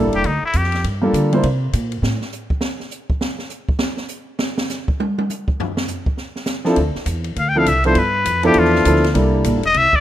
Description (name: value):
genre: jazz, small-group swing and bop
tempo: 202 BPM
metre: 4/4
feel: swing 62% on 8ths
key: C mixolydian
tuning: A4 = 440 Hz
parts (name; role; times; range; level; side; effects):
- warm concert grand piano; accompaniment; 0.0-1.4, 6.6-9.6 s; F3 to C5; -17 LUFS; equal; none
- upright bass; bass; 0.0-2.2, 6.8-10.0 s; E1 to D3; -20 LUFS; equal; none
- open jazz drum kit; drums; 0.1-10.0 s; hi-hat, kick drum, ride cymbal, snare drum, toms; -24 LUFS; right 1 dB; none
- trumpet with straight mute; melody; 0.2-0.9, 7.4-10.0 s; Eb4 to G5; -17 LUFS; left 2 dB; none
room: light reverb, small room ambience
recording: rough home demo mix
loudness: -16 LUFS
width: side -12 dB against mid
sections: 0.0-10.0 A section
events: muted trumpet solo 0.0-10.0; drum solo 2.0-6.8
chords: 0.0 C13 (rootless); 0.8 Gm7; 1.4 Bbsus2; 2.0 N.C.; 5.6 Am; 6.8 Dm7; 8.0 G13; 9.2 C13